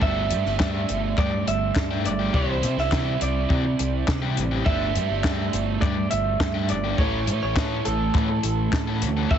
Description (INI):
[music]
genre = indie rock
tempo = 103 BPM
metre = 4/4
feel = straight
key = unclear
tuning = A4 = 440 Hz
[part]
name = electric guitar through a small old amp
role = melody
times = 0.0-9.4 s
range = A4 to E5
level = -28 LUFS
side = right 3 dB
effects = tape echo
[part]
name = raw garage guitar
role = riff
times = 0.0-9.4 s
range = E3 to A4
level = -31 LUFS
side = left 8 dB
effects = overdrive
[part]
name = raw garage guitar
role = riff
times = 0.0-9.4 s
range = A2 to G4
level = -28 LUFS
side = right 6 dB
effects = overdrive, analog chorus
[part]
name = overdriven picked electric bass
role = bass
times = 0.0-9.4 s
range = G1 to C3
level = -26 LUFS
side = left 1 dB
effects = none
[part]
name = compact cocktail drum kit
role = drums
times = 0.0-9.4 s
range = hi-hat, kick drum, snare drum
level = -26 LUFS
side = equal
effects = none
[part]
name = group handclap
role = percussion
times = 0.6-8.9 s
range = none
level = -33 LUFS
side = left 8 dB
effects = none
[sound]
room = light reverb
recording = heavily compressed radio sound, nothing above 8.0 kHz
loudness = -21 LUFS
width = side -9 dB against mid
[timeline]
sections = 0.0-9.4 A section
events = none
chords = 0.0 Gsus2; 2.3 Cadd9; 4.7 Gsus2; 7.0 A